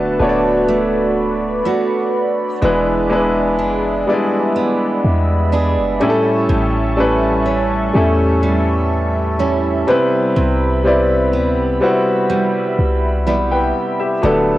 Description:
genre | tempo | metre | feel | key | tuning
R&B | 62 BPM | 4/4 | straight | unclear | A4 = 440 Hz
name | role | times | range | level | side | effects
clear concert grand piano | accompaniment | 0.0-14.6 s | F#3 to B5 | -16 LUFS | left 1 dB | none
chorused pulse-width pad | sustained chords | 0.0-14.6 s | G3 to D6 | -22 LUFS | right 1 dB | none
fingerpicked steel-string acoustic guitar | arpeggios | 0.0-14.6 s | A2 to G#4 | -22 LUFS | right 4 dB | none
warm 808-style bass | bass | 0.0-14.6 s | D1 to E2 | -20 LUFS | equal | none
room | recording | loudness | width
moderate spring reverb, RT60 2.5 s | home recording on cassette | -14 LUFS | side -15 dB against mid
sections
0.0-14.6 A section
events
none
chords
0.0 D6; 2.6 E7; 6.0 A7; 9.9 Cmaj7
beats
0.68 1.65 | 2.62 3.59 4.55 5.52 | 6.49 7.46 8.43 9.39 | 10.36 11.33 12.30 13.26 | 14.23

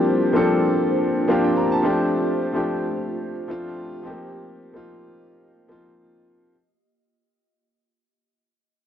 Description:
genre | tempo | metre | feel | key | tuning
amapiano | 109 BPM | 4/4 | swing 55% on 16ths | unclear | A4 = 440 Hz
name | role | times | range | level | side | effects
warm concert grand piano | accompaniment | 0.0-6.5 s | F3 to Bb5 | -20 LUFS | left 1 dB | cassette tape
ethereal airy pad | sustained chords | 0.0-6.5 s | A3 to Eb5 | -28 LUFS | right 4 dB | ensemble chorus, built-in reverb, cassette tape
room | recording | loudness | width
moderate studio reverb, RT60 0.6 s | home recording on cassette | -19 LUFS | side -10 dB against mid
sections
0.0-6.5 A section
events
fade-out 0.0-6.5; grand piano fill 1.0-2.1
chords
0.0 C9sus4; 1.8 G9sus4; 4.0 F9sus4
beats
0.47 1.02 1.57 | 2.12 2.67 3.22 3.77 | 4.32 4.87 5.42 5.97

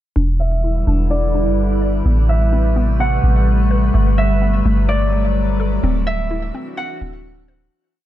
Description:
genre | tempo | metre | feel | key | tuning
hip hop, atmospheric cloud-rap | 127 BPM | 4/4 | half-time | E minor | A4 = 440 Hz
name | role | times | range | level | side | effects
glassy FM pad | sustained chords | 0.6-7.7 s | C3 to B4 | -22 LUFS | left 1 dB | ensemble chorus, built-in reverb, low-pass filter
hollow square pluck | arpeggios | 0.2-7.7 s | A3 to D5 | -27 LUFS | left 2 dB | chorus, low-pass filter, tape echo
soft 808-style bass | bass | 0.2-7.7 s | D1 to A1 | -16 LUFS | equal | none
concert harp | melody | 0.4-8.1 s | D5 to F#5 | -24 LUFS | right 1 dB | low-pass filter, tape echo
room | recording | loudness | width
little or no reverb | none | -14 LUFS | side -13 dB against mid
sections
0.2-7.7 breakdown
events
filter sweep 0.2-7.7; fade-out 5.8-7.7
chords
0.2 Em7; 2.1 Am9; 3.9 Gmaj9; 5.8 D9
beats
| 0.16 0.64 1.11 1.58 | 2.05 2.53 3.00 3.47 | 3.94 4.42 4.89 5.36 | 5.83 6.30 6.78 7.25

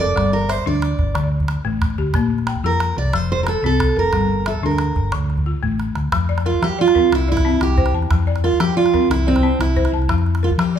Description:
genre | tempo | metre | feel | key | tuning
west african traditional, West African string and xylophone music | 121 BPM (dotted quarters) | 12/8 | straight | F major | A4 = 437 Hz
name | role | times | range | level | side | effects
picked steel-string acoustic guitar | melody | 0.0-10.8 s | C4 to D5 | -19 LUFS | right 5 dB | none
balafon | arpeggios | 0.0-10.8 s | D3 to A5 | -23 LUFS | left 6 dB | none
hollow-body short-scale fingered electric bass | bass | 0.0-10.8 s | F1 to F3 | -20 LUFS | left 1 dB | none
calabash | percussion | 0.0-10.7 s | none | -24 LUFS | right 1 dB | none
room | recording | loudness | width
moderate large studio reverb, RT60 1.2 s | band playing live in one room | -16 LUFS | side -9 dB against mid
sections
0.0-6.1 A section; 6.1-10.8 B section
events
drum fill 5.5-6.1; steel-string acoustic guitar solo 6.1-10.8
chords
0.2 Gm; 1.2 D5; 2.1 Bb5; 3.1 F; 4.1 Gm; 5.1 Dm; 6.1 F5; 7.1 C; 8.1 F; 9.1 C; 10.1 F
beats
| 0.16 0.66 1.15 1.65 | 2.15 2.65 3.14 3.64 | 4.14 4.63 5.13 5.63 | 6.12 6.62 7.12 7.61 | 8.11 8.60 9.10 9.59 | 10.09 10.58

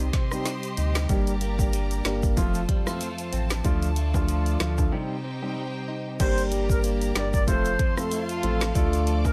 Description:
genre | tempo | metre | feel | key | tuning
dancehall | 94 BPM | 4/4 | swing 56% on 16ths | G minor | A4 = 440 Hz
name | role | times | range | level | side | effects
dark baby grand piano | accompaniment | 0.0-9.3 s | F3 to A4 | -32 LUFS | equal | none
clear studio string section | sustained chords | 0.0-9.3 s | Eb4 to D6 | -39 LUFS | equal | sidechain pumping
direct-recorded clean electric guitar | arpeggios | 0.0-9.3 s | F2 to Eb4 | -36 LUFS | equal | lush chorus
warm sub bass | bass | 0.0-9.3 s | F1 to D2 | -29 LUFS | equal | none
afro-pop drum kit | drums | 0.0-9.3 s | crash cymbal, hi-hat, kick drum, rim click, snare drum | -28 LUFS | equal | none
egg shaker and timbales | percussion | 0.3-9.3 s | none | -42 LUFS | equal | none
breathy flute-like synth lead | melody | 6.2-9.3 s | Bb4 to D5 | -32 LUFS | equal | chorus, digital delay
warm horn section | second line | 8.1-9.0 s | F4 | -34 LUFS | equal | digital delay
room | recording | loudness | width
studio reverb | none | -25 LUFS | mono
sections
0.0-6.2 A section; 6.2-9.3 B section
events
break 4.9-6.2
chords
0.0 Cm; 1.1 Gm; 2.4 F; 3.6 Dm; 4.9 Cm; 6.2 Gm; 7.5 F; 8.8 Dm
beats
0.46 | 1.09 1.73 2.37 3.01 | 3.65 4.29 4.92 5.56 | 6.20 6.84 7.48 8.12 | 8.75

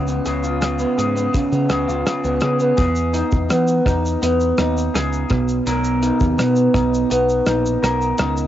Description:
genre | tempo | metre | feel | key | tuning
indie pop, bedroom pop | 83 BPM | 4/4 | straight | unclear | A4 = 443 Hz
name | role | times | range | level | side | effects
electric guitar through a small old amp | accompaniment | 0.0-8.5 s | B2 to A#4 | -18 LUFS | equal | lush chorus, warbly pitch drift, cassette tape
picked electric bass | bass | 0.0-8.5 s | A#1 to E3 | -22 LUFS | equal | none
cloth-damped thuddy drum kit | drums | 0.1-8.5 s | hi-hat, kick drum, rim click, shaker | -22 LUFS | equal | cassette tape
room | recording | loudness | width
light reverb | home recording on cassette, nothing above 7.7 kHz | -16 LUFS | side -12 dB against mid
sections
0.0-2.8 A section; 2.8-8.5 B section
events
none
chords
0.0 C#7; 2.8 Emaj7; 5.3 Bmaj7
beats
0.62 1.34 2.06 | 2.79 3.51 4.23 4.95 | 5.67 6.39 7.11 7.83

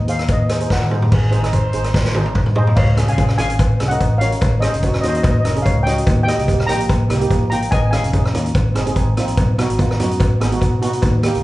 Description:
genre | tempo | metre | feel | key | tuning
calypso | 145 BPM | 4/4 | swing 54% on 16ths | unclear | A4 = 441 Hz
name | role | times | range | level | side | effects
steel pan | melody | 0.0-9.1 s | C5 to Bb5 | -22 LUFS | left 2 dB | none
fingered electric bass | bass | 0.0-11.4 s | F1 to Cb3 | -22 LUFS | equal | none
steel pan | accompaniment | 0.1-11.4 s | Bb3 to Ab5 | -23 LUFS | right 3 dB | none
street-band drum kit | drums | 0.1-11.4 s | crash cymbal, hi-hat, kick drum, rim click, snare drum, toms | -16 LUFS | equal | none
cowbell | percussion | 0.3-11.1 s | none | -30 LUFS | left 1 dB | none
warm horn section | second line | 1.1-2.3 s | Ab4 to C5 | -27 LUFS | right 1 dB | none
room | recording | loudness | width
moderate large studio reverb, RT60 0.7 s | band playing live in one room, nothing above 10.6 kHz | -14 LUFS | side -17 dB against mid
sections
0.0-1.1 A section; 1.1-2.8 B section; 2.8-11.4 C section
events
steel pan solo 0.0-1.1; drum fill 0.7-1.1, 1.9-2.8; steel pan fill 8.8-9.4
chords
0.0 Ab7; 1.1 Ab; 2.8 Db; 4.4 Absus4; 6.1 Eb; 7.7 Absus4; 8.5 Ab; 9.4 Cb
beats
0.29 0.70 | 1.12 1.53 1.94 2.36 | 2.77 3.18 3.60 4.01 | 4.42 4.83 5.25 5.66 | 6.07 6.48 6.90 7.31 | 7.72 8.13 8.55 8.96 | 9.37 9.79 10.20 10.61 | 11.03

